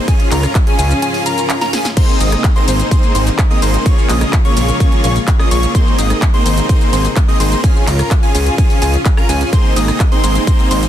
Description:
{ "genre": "EDM, festival progressive house", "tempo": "127 BPM", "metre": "4/4", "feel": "straight", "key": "Ab major", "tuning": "A4 = 440 Hz", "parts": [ { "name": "dark chamber string section", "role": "sustained chords", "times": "0.0-10.9 s", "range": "Ab2 to F4", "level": "-24 LUFS", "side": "left 1 dB", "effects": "sidechain pumping" }, { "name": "plucky unison lead", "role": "arpeggios", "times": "0.0-10.8 s", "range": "Ab5 to Eb6", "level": "-22 LUFS", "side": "left 1 dB", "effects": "sidechain pumping, ping-pong delay" }, { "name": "supersaw chords", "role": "riff", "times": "0.0-10.8 s", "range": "Bb3 to Eb5", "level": "-18 LUFS", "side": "equal", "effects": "lush chorus, sidechain pumping, ping-pong delay" }, { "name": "big-room dance drum kit", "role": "drums", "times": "0.1-10.9 s", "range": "crash cymbal, handclaps, hi-hat, ride cymbal, rim click, shaker, snare drum", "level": "-22 LUFS", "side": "left 1 dB", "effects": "none" }, { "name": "electronic kick drum", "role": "drums", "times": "0.1-10.6 s", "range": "none", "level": "-12 LUFS", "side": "equal", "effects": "none" }, { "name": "fat analog bass", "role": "bass", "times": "0.3-10.9 s", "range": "Ab1 to Db2", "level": "-15 LUFS", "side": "equal", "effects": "sidechain pumping" } ], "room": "digital ambience", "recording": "dense, heavily limited modern master", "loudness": "-11 LUFS", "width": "side -11 dB against mid", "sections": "0.0-2.0 A section; 2.0-10.9 A section", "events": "drop 0.0-2.0, 2.0-10.9; break 1.0-2.0; drum fill 1.6-2.0", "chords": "0.1 Db; 2.0 Abadd9; 3.9 Bbm7; 5.7 Abadd9; 7.6 Db; 9.5 Abadd9", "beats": "| 0.08 0.55 1.02 1.50 | 1.97 2.44 2.91 3.39 | 3.86 4.33 4.80 5.28 | 5.75 6.22 6.69 7.17 | 7.64 8.11 8.58 9.06 | 9.53 10.00 10.47" }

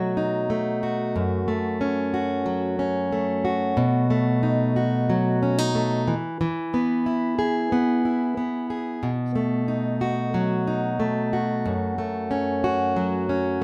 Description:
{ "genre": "pop", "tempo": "91 BPM", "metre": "4/4", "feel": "straight", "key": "unclear", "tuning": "A4 = 440 Hz", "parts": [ { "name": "fingerpicked plugged-in steel-string acoustic guitar", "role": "solo", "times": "0.0-13.6 s", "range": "F#2 to G#4", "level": "-24 LUFS", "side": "equal", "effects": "none" } ], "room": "wet studio reverb, RT60 0.5 s", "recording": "band playing live in one room", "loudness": "-24 LUFS", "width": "mono", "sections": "0.0-13.6 A section", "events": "none", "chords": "0.0 B7; 1.1 F#m; 3.8 B7; 6.1 E; 9.0 B7; 11.7 F#m", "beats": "0.49 | 1.15 1.80 2.46 3.12 | 3.77 4.43 5.08 5.74 | 6.40 7.05 7.71 8.37 | 9.03 9.68 10.34 10.99 | 11.65 12.31 12.96 13.62" }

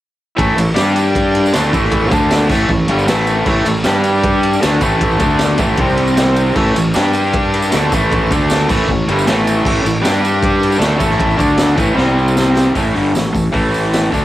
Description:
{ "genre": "garage rock duo or trio", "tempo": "155 BPM", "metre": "4/4", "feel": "straight", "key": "unclear", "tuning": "A4 = 440 Hz", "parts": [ { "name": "combo organ", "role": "sustained chords", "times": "0.4-14.2 s", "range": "C4 to D5", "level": "-25 LUFS", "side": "right 1 dB", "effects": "cassette tape" }, { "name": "raw garage guitar", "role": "riff", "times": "0.4-14.2 s", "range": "G2 to G4", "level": "-14 LUFS", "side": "equal", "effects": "overdrive, cassette tape" }, { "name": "fuzz fingered electric bass", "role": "bass", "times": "0.4-14.2 s", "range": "G1 to G2", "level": "-18 LUFS", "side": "equal", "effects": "overdrive" }, { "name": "raw garage drum kit", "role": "drums", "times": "0.4-14.2 s", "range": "crash cymbal, hi-hat, kick drum, ride cymbal, snare drum", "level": "-18 LUFS", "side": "equal", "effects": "cassette tape" }, { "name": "tambourine", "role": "percussion", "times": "0.4-14.2 s", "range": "none", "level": "-32 LUFS", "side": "right 3 dB", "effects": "none" } ], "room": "light reverb", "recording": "home recording on cassette", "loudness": "-12 LUFS", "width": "side -14 dB against mid", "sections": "0.4-12.8 A section; 12.8-14.2 B section", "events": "drum fill 12.0-12.8", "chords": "0.4 A; 0.8 G5; 1.5 A; 2.1 D5; 2.5 A; 3.9 G5; 4.6 A; 5.2 D5; 5.6 A; 5.8 C5; 6.6 A; 6.9 G5; 7.7 A; 8.3 D5; 8.7 A; 10.0 G5; 10.8 A; 11.4 D5; 11.8 A; 12.0 C5; 12.8 A", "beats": "| 0.39 0.77 1.16 1.54 | 1.93 2.31 2.70 3.08 | 3.47 3.86 4.24 4.63 | 5.01 5.40 5.79 6.17 | 6.56 6.95 7.33 7.72 | 8.11 8.49 8.88 9.27 | 9.65 10.04 10.43 10.81 | 11.20 11.59 11.98 12.37 | 12.75 13.14 13.53 13.92" }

